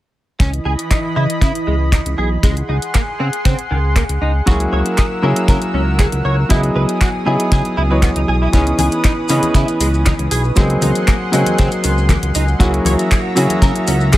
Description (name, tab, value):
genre	nu-disco, nu disco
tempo	118 BPM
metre	4/4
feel	straight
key	C# dorian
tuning	A4 = 437 Hz
part	lush unison pad	sustained chords	0.4-14.2 s	E3 to E6	-23 LUFS	equal	chorus, sidechain pumping
part	direct-recorded clean electric guitar	riff	0.4-14.2 s	D#3 to C#5	-24 LUFS	right 1 dB	ensemble chorus, dub echo
part	fat analog bass	bass	0.4-14.2 s	B1 to C#3	-17 LUFS	equal	none
part	kick drum	drums	0.4-14.2 s	none	-14 LUFS	equal	none
part	pop drum kit	drums	0.4-14.2 s	handclaps, hi-hat	-24 LUFS	equal	overdrive
part	clear baby grand piano	accompaniment	4.5-14.2 s	E3 to D#5	-18 LUFS	equal	dub echo
part	maracas and congas	percussion	8.5-14.2 s	none	-25 LUFS	left 4 dB	none
room	light reverb, small room ambience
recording	none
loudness	-13 LUFS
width	side -15 dB against mid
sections	0.4-14.2 A section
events	none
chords	0.4 C#m9; 2.4 G#7/C#; 4.5 F#7/C#; 6.5 Emaj7/C#; 8.5 C#m9; 10.6 G#7/C#; 12.6 F#7/C#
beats	| 0.40 0.91 1.42 1.93 | 2.44 2.94 3.45 3.96 | 4.47 4.98 5.49 5.99 | 6.50 7.01 7.52 8.03 | 8.54 9.04 9.55 10.06 | 10.57 11.08 11.59 12.10 | 12.60 13.11 13.62 14.13